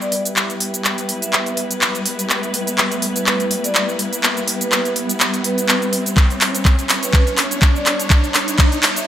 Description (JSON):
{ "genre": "bass house", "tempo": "124 BPM", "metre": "4/4", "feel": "swing 56% on 16ths", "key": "E dorian", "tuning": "A4 = 440 Hz", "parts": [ { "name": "vibraphone with medium hard mallets", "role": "melody", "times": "0.0-9.1 s", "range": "B4 to E5", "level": "-25 LUFS", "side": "right 2 dB", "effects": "digital delay" }, { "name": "dark chamber string section", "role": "sustained chords", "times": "0.0-9.1 s", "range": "G3 to C#5", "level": "-24 LUFS", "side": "left 2 dB", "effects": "sidechain pumping, low-pass filter" }, { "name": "house drum kit", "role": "drums", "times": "0.0-9.1 s", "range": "handclaps, hi-hat, shaker", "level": "-18 LUFS", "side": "equal", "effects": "small room ambience" }, { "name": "riser", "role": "sound effects", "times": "1.0-9.1 s", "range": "none", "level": "-27 LUFS", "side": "right 1 dB", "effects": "none" }, { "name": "warbly tape-like pad", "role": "texture", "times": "0.0-9.1 s", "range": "B3 to G5", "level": "-33 LUFS", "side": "right 1 dB", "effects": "chorus, built-in reverb, sidechain pumping" }, { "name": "electronic kick drum", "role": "drums", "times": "6.2-8.7 s", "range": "none", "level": "-13 LUFS", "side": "equal", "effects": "overdrive, small room ambience" } ], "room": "light reverb", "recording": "none", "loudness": "-15 LUFS", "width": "side -11 dB against mid", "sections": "0.0-9.1 A section", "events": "build-up 0.0-9.1; drum fill 0.0-9.1; filter sweep on string section 0.0-9.1; riser 1.0-9.1", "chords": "0.0 Em" }